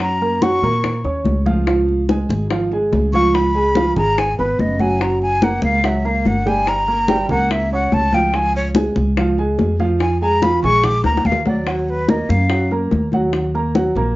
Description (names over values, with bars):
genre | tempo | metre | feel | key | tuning
Afro-Cuban jazz | 144 BPM | 4/4 | straight | Db mixolydian | A4 = 439 Hz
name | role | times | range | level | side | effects
breathy jazz flute | melody | 0.0-12.7 s | Cb5 to D6 | -19 LUFS | left 1 dB | none
warm upright piano | accompaniment | 0.0-14.2 s | F3 to Db6 | -20 LUFS | right 2 dB | none
upright bass | bass | 0.0-14.2 s | Gb1 to Bb2 | -20 LUFS | equal | none
bongos | percussion | 0.0-14.2 s | none | -24 LUFS | left 4 dB | none
congas | percussion | 0.0-14.2 s | none | -22 LUFS | left 1 dB | none
room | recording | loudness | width
moderate studio reverb, RT60 0.6 s | worn, warbling old tape, cassette tape, warbly pitch drift, nothing above 7.5 kHz | -15 LUFS | side -18 dB against mid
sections
0.0-14.2 A section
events
flute solo 0.0-14.2; drum fill 11.0-11.7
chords
0.0 Gb; 1.7 Db7; 5.0 Gb; 6.7 Gdim; 8.3 Db; 10.0 Bbm7; 10.8 Bb7; 11.7 Ebm